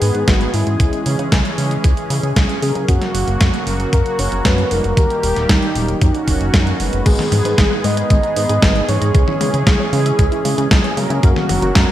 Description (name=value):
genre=italo disco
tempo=115 BPM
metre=4/4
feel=straight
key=G# minor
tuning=A4 = 440 Hz
part: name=soft octave-layered synth lead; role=melody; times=0.0-11.9 s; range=D#4 to D#5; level=-22 LUFS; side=equal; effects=chorus, digital delay
part: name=warm analog pad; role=sustained chords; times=0.0-11.9 s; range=C#3 to G#4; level=-24 LUFS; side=left 1 dB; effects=chorus
part: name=mellow synth brass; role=stabs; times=0.0-11.9 s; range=E3 to B4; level=-24 LUFS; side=right 2 dB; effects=chorus, cassette tape
part: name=chorused synth bass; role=bass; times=0.0-11.9 s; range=D#1 to C#3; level=-19 LUFS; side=equal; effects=none
part: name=clean 12-bit digital drum machine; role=drums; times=0.0-11.9 s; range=crash cymbal, hi-hat, snare drum, toms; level=-20 LUFS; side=equal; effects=gated reverb
part: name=electronic kick drum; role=drums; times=0.3-11.9 s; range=none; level=-14 LUFS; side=equal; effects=none
part: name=wide unison pluck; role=arpeggios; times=7.1-11.9 s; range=F#3 to E5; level=-27 LUFS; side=left 2 dB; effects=none
room=light reverb, digital ambience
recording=bright 1980s-style digital production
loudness=-13 LUFS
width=side -12 dB against mid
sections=0.0-7.1 A section; 7.1-11.9 B section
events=none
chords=0.0 G#m; 0.8 C#m; 2.9 F#; 5.0 D#; 6.0 F#6; 7.1 G#m; 9.1 C#m; 11.2 F#